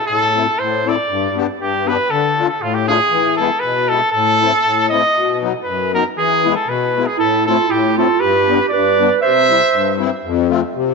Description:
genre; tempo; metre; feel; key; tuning
alpine folk, alpine dance band; 118 BPM; 2/4; swing 55% on 8ths; A minor; A4 = 439 Hz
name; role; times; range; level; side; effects
clear trumpet; melody; 0.0-10.0 s; F4 to E5; -16 LUFS; equal; none
musette accordion; accompaniment; 0.1-10.9 s; F2 to A4; -19 LUFS; left 10 dB; none
warm clarinet; second line; 7.2-10.0 s; E4 to C5; -17 LUFS; right 12 dB; none
room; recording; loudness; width
wet echo chamber reverb, RT60 2.7 s; 1960s-style stereo with parts hard left and right, nothing above 7.7 kHz; -13 LUFS; side -4 dB against mid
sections
0.1-10.9 A section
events
none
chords
0.1 Am; 1.1 G; 2.1 Dm; 3.1 E; 4.1 Am; 5.1 B; 6.2 E; 7.2 Am; 8.2 G; 9.2 C; 10.2 F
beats
| 0.06 0.57 | 1.08 1.58 | 2.09 2.59 | 3.10 3.61 | 4.12 4.63 | 5.14 5.65 | 6.16 6.67 | 7.17 7.68 | 8.20 8.71 | 9.21 9.72 | 10.23 10.74

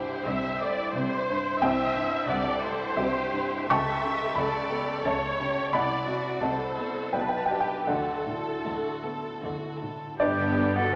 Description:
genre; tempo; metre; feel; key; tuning
classical, romantic movement for piano and orchestra; 77-93 BPM; 3/4; rubato; G major; A4 = 440 Hz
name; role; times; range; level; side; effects
rich chamber violin section; melody; 0.0-10.9 s; D4 to B4; -42 LUFS; equal; none
warm baby grand piano; melody; 0.0-11.0 s; B1 to C#6; -31 LUFS; equal; none
warm symphonic violin section; second line; 0.0-11.0 s; G4 to E5; -38 LUFS; equal; none
warm studio viola section; accompaniment; 0.0-10.9 s; G3 to E5; -33 LUFS; equal; none
rich symphonic double bass section; bass; 0.0-11.0 s; G1 to D2; -44 LUFS; equal; none
warm chamber cello section; bass; 0.0-11.0 s; G2 to D3; -39 LUFS; equal; none
clear oboe; second line; 10.2-11.0 s; G4 to A4; -32 LUFS; equal; none
concert flute; second line; 10.2-10.9 s; D5 to F#5; -40 LUFS; equal; none
clear trombone section; sustained chords; 10.2-11.0 s; D3 to B3; -38 LUFS; equal; none
clear trumpet; stabs; 10.2-11.0 s; G4; -41 LUFS; equal; none
room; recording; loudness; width
wet scoring stage reverb, RT60 1.9 s; none; -28 LUFS; mono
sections
0.0-10.2 A section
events
none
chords
0.0 C; 3.7 A7/C#; 5.7 D7/C; 7.1 G/B; 7.9 D; 10.2 G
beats
0.25 0.94 | 1.61 2.28 2.96 | 3.70 4.37 5.05 | 5.74 6.42 7.14 | 7.89 8.65 9.43 | 10.20 10.95

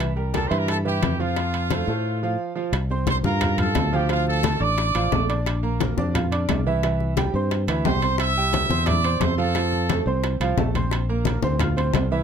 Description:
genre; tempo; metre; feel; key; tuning
latin, salsa; 176 BPM; 4/4; straight; unclear; A4 = 440 Hz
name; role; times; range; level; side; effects
bright concert grand piano; accompaniment; 0.0-12.2 s; E3 to F6; -26 LUFS; right 4 dB; none
fingered electric bass; bass; 0.0-12.2 s; A1 to A2; -24 LUFS; equal; none
congas; percussion; 0.0-12.2 s; none; -28 LUFS; left 4 dB; none
timbales; percussion; 0.0-12.1 s; none; -31 LUFS; right 6 dB; none
bongos; percussion; 0.3-12.1 s; none; -31 LUFS; left 10 dB; none
bright trumpet section; melody; 0.4-5.3, 7.9-10.0 s; F4 to E6; -25 LUFS; right 2 dB; none
room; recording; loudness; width
little or no reverb; close, detailed microphones; -20 LUFS; side -7 dB against mid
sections
0.0-2.7 A section; 2.7-12.2 B section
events
none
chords
0.0 C7; 1.4 F; 2.7 Csus4; 4.1 Dm; 5.5 Bb; 6.8 C; 9.6 F; 10.9 Bbadd9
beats
| 0.00 0.34 0.69 1.03 | 1.37 1.71 2.05 2.39 | 2.74 3.08 3.42 3.76 | 4.10 4.44 4.78 5.12 | 5.47 5.81 6.15 6.49 | 6.83 7.17 7.51 7.85 | 8.19 8.53 8.88 9.22 | 9.56 9.90 10.24 10.58 | 10.92 11.26 11.60 11.94

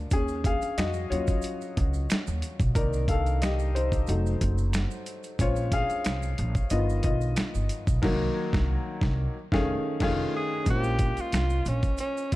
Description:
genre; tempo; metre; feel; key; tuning
R&B, neo-soul; 91 BPM; 4/4; swing 53% on 16ths; unclear; A4 = 439 Hz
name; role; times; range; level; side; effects
clear concert grand piano; accompaniment; 0.0-12.4 s; Eb3 to F5; -30 LUFS; left 2 dB; none
upright bass; bass; 0.0-12.4 s; F1 to F2; -28 LUFS; equal; none
dusty soul sampler-style drum kit; drums; 0.1-12.4 s; crash cymbal, finger snaps, hi-hat, kick drum, snare drum; -28 LUFS; equal; overdrive
maracas and finger snaps; percussion; 0.1-12.3 s; none; -44 LUFS; right 7 dB; none
breathy tenor saxophone; melody; 10.0-12.4 s; Db4 to G#4; -30 LUFS; equal; none
room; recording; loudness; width
small room ambience; dark, warm production; -24 LUFS; side -17 dB against mid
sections
0.0-10.7 A section; 10.7-12.4 B section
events
grand piano solo 0.0-10.7; band accent 8.0-10.7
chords
0.1 Ebm9; 2.8 Cm7; 4.1 F7b9; 5.4 Bbm9; 6.7 G7b13; 8.0 Cm7b5; 9.3 F7alt; 10.7 Bbm7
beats
| 0.12 0.78 1.43 2.09 | 2.75 3.41 4.07 4.73 | 5.39 6.05 6.71 7.37 | 8.03 8.69 9.35 10.01 | 10.66 11.32 11.98

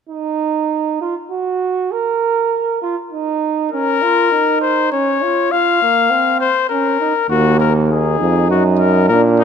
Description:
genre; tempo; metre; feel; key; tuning
classical, imitative canzona for brass ensemble; 100 BPM; 3/4; straight; Eb minor; A4 = 437 Hz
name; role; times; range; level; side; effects
mellow flugelhorn; second line; 0.1-9.4 s; Bb3 to Bb4; -18 LUFS; right 7 dB; none
warm trumpet; melody; 3.7-9.4 s; Eb4 to F5; -15 LUFS; left 7 dB; none
clear bass trombone; bass; 7.3-9.4 s; Eb2 to Bb2; -14 LUFS; equal; none
room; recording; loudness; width
moderate concert hall reverb, RT60 1.8 s; close, detailed microphones; -14 LUFS; side -7 dB against mid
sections
0.1-9.4 A section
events
none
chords
0.1 N.C.; 3.7 Bbm/Db; 4.9 Db; 5.5 F5; 6.7 Bbm/Db; 7.3 Ebm; 8.5 Ebm/Gb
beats
| 0.10 0.70 1.31 | 1.92 2.52 3.12 | 3.73 4.33 4.92 | 5.52 6.11 6.71 | 7.31 7.91 8.51 | 9.10

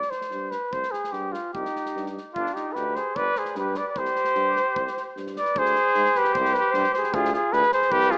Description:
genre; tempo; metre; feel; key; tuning
balkan folk, Balkan brass band; 150 BPM; 2/4; straight; C harmonic minor; A4 = 435 Hz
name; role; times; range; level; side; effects
mellow cornet; melody; 0.0-8.2 s; F4 to D5; -23 LUFS; equal; none
natural country drum kit; percussion; 0.0-8.2 s; kick drum, snare drum; -42 LUFS; equal; none
clear tuba; bass; 0.3-8.1 s; G1 to Ab2; -32 LUFS; equal; none
mellow trumpet; second line; 1.6-8.2 s; D4 to B4; -28 LUFS; equal; none
room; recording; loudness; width
moderate lush hall reverb, RT60 1.9 s; rough home demo mix, small speaker sound; -22 LUFS; side -38 dB against mid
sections
0.0-5.6 A section; 5.6-8.2 B section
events
speeding up 0.0-8.2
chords
0.0 Cm; 2.4 G5; 4.0 C5; 5.6 Abmaj7#11/D; 6.3 C5; 7.1 Dm7b5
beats
0.33 | 0.73 1.14 | 1.54 1.95 | 2.35 2.76 | 3.16 3.56 | 3.96 4.37 | 4.76 5.16 | 5.56 5.95 | 6.35 6.74 | 7.13 7.53 | 7.92

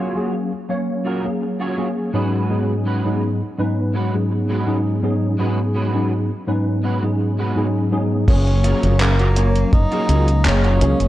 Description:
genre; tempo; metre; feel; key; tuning
vaporwave; 83 BPM; 4/4; straight; F# major; A4 = 440 Hz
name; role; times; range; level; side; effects
tine electric piano; accompaniment; 0.0-11.1 s; G#2 to E#5; -20 LUFS; equal; overdrive, ensemble chorus
electric guitar at the edge of break-up; riff; 0.0-11.0 s; G#3 to C#5; -28 LUFS; right 2 dB; ensemble chorus, low-pass filter, analog delay
breathy tenor saxophone; melody; 8.3-11.1 s; A#3 to D#4; -23 LUFS; equal; vintage 12-bit sampler grit, tape echo
mellow fretless electric bass; bass; 8.3-11.1 s; F#1 to C#2; -16 LUFS; equal; none
gated 80s digital drum machine; drums; 8.3-11.1 s; crash cymbal, handclaps, hi-hat; -24 LUFS; equal; gated reverb, overdrive, low-pass filter on snare, low-pass filter on hats, low-pass filter on cymbals, low-pass filter on room
kick drum; drums; 8.3-9.9 s; none; -15 LUFS; equal; none
room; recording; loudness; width
light reverb, studio reverb; dark, warm production, cassette tape; -17 LUFS; side -14 dB against mid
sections
0.0-8.3 A section; 8.3-11.1 B section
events
none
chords
0.0 F#maj9; 2.1 C#7sus4/G#; 8.3 F#maj9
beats
0.33 1.05 1.78 | 2.50 3.22 3.94 4.67 | 5.39 6.11 6.84 7.56 | 8.28 9.01 9.73 10.45

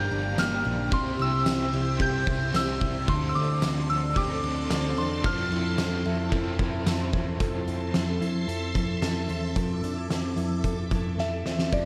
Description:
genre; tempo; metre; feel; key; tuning
dream pop; 111 BPM; 4/4; straight; F major; A4 = 444 Hz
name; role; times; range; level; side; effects
soft synth bell; melody; 0.0-6.8, 11.2-11.9 s; D5 to G6; -33 LUFS; equal; chorus, digital delay
overdriven electric guitar; accompaniment; 0.0-7.9 s; G2 to A4; -39 LUFS; equal; tremolo, lush chorus
phased string machine; sustained chords; 0.0-11.9 s; C3 to D6; -38 LUFS; equal; ensemble chorus, phaser
mellow electric guitar; arpeggios; 0.0-11.9 s; G2 to A4; -33 LUFS; equal; subtle chorus, digital delay
hollow-body short-scale picked electric bass; bass; 0.0-11.9 s; F1 to F2; -33 LUFS; equal; none
oversized low-tuned drum kit; drums; 0.1-11.9 s; crash cymbal, hi-hat, kick drum, ride cymbal, snare drum, tambourine; -32 LUFS; equal; none
room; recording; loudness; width
light reverb, studio reverb; none; -27 LUFS; mono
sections
0.0-7.4 A section; 7.4-11.7 B section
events
drum fill 11.2-11.7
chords
0.0 Gm7; 0.9 C; 3.1 Dm7; 5.2 Fmaj7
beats
0.38 | 0.92 1.46 2.00 2.54 | 3.08 3.62 4.16 4.70 | 5.24 5.78 6.32 6.87 | 7.41 7.95 8.49 9.03 | 9.57 10.11 10.65 11.19 | 11.73

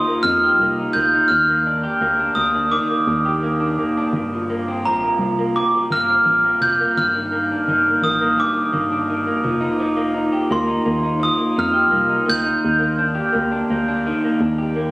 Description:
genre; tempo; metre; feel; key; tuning
indie pop, bedroom pop; 85 BPM; 4/4; straight; unclear; A4 = 440 Hz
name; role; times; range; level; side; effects
glockenspiel with rubber mallets; melody; 0.0-14.7 s; Bb5 to G6; -18 LUFS; equal; lush chorus, slapback echo, plate reverb
electric guitar through a small old amp; accompaniment; 0.0-14.9 s; G2 to G4; -21 LUFS; equal; wide subtle chorus, warbly pitch drift
organ-like FM bass; bass; 0.2-14.9 s; F1 to F2; -26 LUFS; equal; none
room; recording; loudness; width
moderate studio reverb, RT60 0.5 s; recorded on a phone in the room, studio reverb, compression; -16 LUFS; side -21 dB against mid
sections
0.0-14.9 A section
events
none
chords
0.0 F9sus4; 1.3 F13sus4; 4.1 Gm11; 7.0 Ebmaj7/G; 9.5 F9sus4; 12.6 Ebmaj7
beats
0.59 | 1.30 2.01 2.72 3.43 | 4.14 4.85 5.55 6.26 | 6.97 7.68 8.39 9.10 | 9.80 10.51 11.22 11.93 | 12.64 13.35 14.05 14.76

